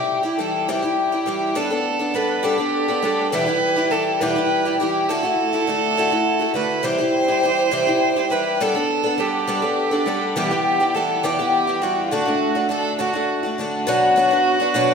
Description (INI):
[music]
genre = acoustic folk duo or small band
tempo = 68 BPM (dotted quarters)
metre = 6/8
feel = straight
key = G major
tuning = A4 = 440 Hz
[part]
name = rich fiddle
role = second line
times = 0.0-14.9 s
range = F4 to C5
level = -22 LUFS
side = right 4 dB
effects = none
[part]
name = picked twelve-string acoustic guitar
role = accompaniment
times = 0.0-14.9 s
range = E2 to A4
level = -19 LUFS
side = left 2 dB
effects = none
[sound]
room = moderate scoring stage reverb, RT60 1.6 s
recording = recorded in a church or concert hall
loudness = -18 LUFS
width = side -6 dB against mid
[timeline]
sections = 0.0-13.9 A section; 13.9-14.9 B section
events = none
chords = 0.0 C; 1.6 Gadd9; 3.3 Em; 5.1 Dadd9; 6.8 C; 8.6 Gadd9; 10.4 Em; 12.1 D; 13.9 Bm